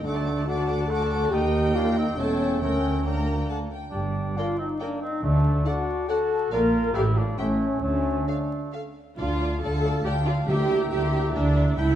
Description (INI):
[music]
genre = quick classical-period movement for symphony orchestra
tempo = 139 BPM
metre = 3/4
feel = straight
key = D minor from 6.5 s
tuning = A4 = 435 Hz
[part]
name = rich studio violin section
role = melody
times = 0.0-11.9 s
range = D5 to D6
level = -40 LUFS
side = left 2 dB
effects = none
[part]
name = mellow hollow silver concert flute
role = second line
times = 0.0-12.0 s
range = C#5 to Bb5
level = -37 LUFS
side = left 2 dB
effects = none
[part]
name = rich chamber violin section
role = second line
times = 0.0-12.0 s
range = D5 to Bb5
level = -38 LUFS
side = left 3 dB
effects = none
[part]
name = warm symphonic viola section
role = accompaniment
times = 0.0-12.0 s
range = D4 to D5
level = -30 LUFS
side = right 2 dB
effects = none
[part]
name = mellow French horn section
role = sustained chords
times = 0.0-12.0 s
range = A3 to Bb4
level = -28 LUFS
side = left 2 dB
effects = none
[part]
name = dark cor anglais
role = second line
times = 0.1-12.0 s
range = A3 to G5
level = -33 LUFS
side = right 2 dB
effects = none
[part]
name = rich chamber double bass section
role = bass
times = 0.1-12.0 s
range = E1 to Eb2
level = -28 LUFS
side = right 1 dB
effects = none
[part]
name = warm symphonic cello section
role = bass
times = 0.1-12.0 s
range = D2 to D3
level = -28 LUFS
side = equal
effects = none
[part]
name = timpani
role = percussion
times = 5.2-5.8, 9.2-11.1 s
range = D3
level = -35 LUFS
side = equal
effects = none
[sound]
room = moderate scoring stage reverb, RT60 1.4 s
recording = dark, warm production, vinyl crackle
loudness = -22 LUFS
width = side -11 dB against mid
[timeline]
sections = 0.0-9.2 A section; 9.2-12.0 B section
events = none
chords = 0.1 D; 1.3 Eb; 2.2 A7/E; 2.6 Gm/D; 3.5 N.C.; 3.9 Gm; 5.2 D; 6.5 Bb5; 6.9 Dm/A; 7.4 A; 7.8 Dm; 10.5 Em7b5/D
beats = | 0.05 0.48 0.91 | 1.33 1.76 2.19 | 2.62 3.07 3.50 | 3.94 4.38 4.81 | 5.24 5.67 6.09 | 6.52 6.95 7.38 | 7.82 8.27 8.72 | 9.18 9.62 10.05 | 10.48 10.91 11.35 | 11.78